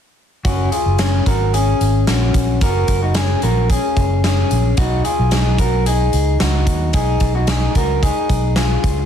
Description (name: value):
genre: jangly indie pop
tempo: 111 BPM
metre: 4/4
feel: straight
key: F# major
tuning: A4 = 439 Hz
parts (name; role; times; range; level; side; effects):
- electric guitar through a small old amp; arpeggios; 0.4-9.1 s; C#4 to A#4; -19 LUFS; left 1 dB; ping-pong delay
- fingered electric bass; bass; 0.4-9.1 s; F#1 to D#2; -17 LUFS; equal; none
- big rock drum kit; drums; 0.4-9.0 s; hi-hat, kick drum, snare drum; -20 LUFS; equal; none
room: light reverb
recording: heavily compressed radio sound, multiband compression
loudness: -14 LUFS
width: side -8 dB against mid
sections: 0.4-9.1 A section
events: none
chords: 0.4 F#add9; 4.8 Badd9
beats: | 0.45 0.99 1.53 2.07 | 2.61 3.15 3.70 4.24 | 4.78 5.32 5.86 6.40 | 6.94 7.48 8.02 8.56